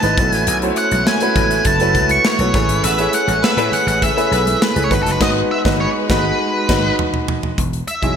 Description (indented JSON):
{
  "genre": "polished 1980s jazz-funk pop",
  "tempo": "101 BPM",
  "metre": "4/4",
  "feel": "straight",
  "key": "unclear",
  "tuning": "A4 = 440 Hz",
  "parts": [
    { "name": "octave-fuzz lead guitar", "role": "melody", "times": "0.0-8.2 s", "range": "A4 to C#6", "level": "-19 LUFS", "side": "equal", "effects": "distortion" },
    { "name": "bright grand piano", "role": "accompaniment", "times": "0.0-8.2 s", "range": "F#3 to C#5", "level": "-19 LUFS", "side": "right 1 dB", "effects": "wide subtle chorus" },
    { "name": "rich studio string section", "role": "sustained chords", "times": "0.0-7.6 s", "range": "E3 to D#5", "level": "-27 LUFS", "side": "left 1 dB", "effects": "none" },
    { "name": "vintage slap bass", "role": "bass", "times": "0.0-8.1 s", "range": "E1 to A2", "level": "-21 LUFS", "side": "equal", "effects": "none" },
    { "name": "modern studio drum kit", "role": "drums", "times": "0.0-8.2 s", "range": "crash cymbal, hi-hat, kick drum, snare drum, toms", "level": "-20 LUFS", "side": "equal", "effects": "gated reverb" },
    { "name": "congas", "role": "percussion", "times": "0.0-8.2 s", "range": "none", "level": "-32 LUFS", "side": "right 2 dB", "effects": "none" },
    { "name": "clear horn section", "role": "second line", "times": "2.8-4.4 s", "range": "B3 to C#5", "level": "-26 LUFS", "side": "right 1 dB", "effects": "digital delay" }
  ],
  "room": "moderate lush hall reverb, RT60 1.7 s, studio ambience",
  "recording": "bright 1980s-style digital production",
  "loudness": "-14 LUFS",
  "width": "side -7 dB against mid",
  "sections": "0.0-7.6 A section",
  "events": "drum fill 5.2-7.6; band accent 5.2-7.6",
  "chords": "0.2 B9sus4; 2.5 Amaj9; 4.9 G#m7; 7.6 Emaj9",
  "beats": "| 0.47 1.06 1.65 2.25 | 2.84 3.43 4.02 4.62 | 5.21 5.80 6.39 6.99 | 7.58"
}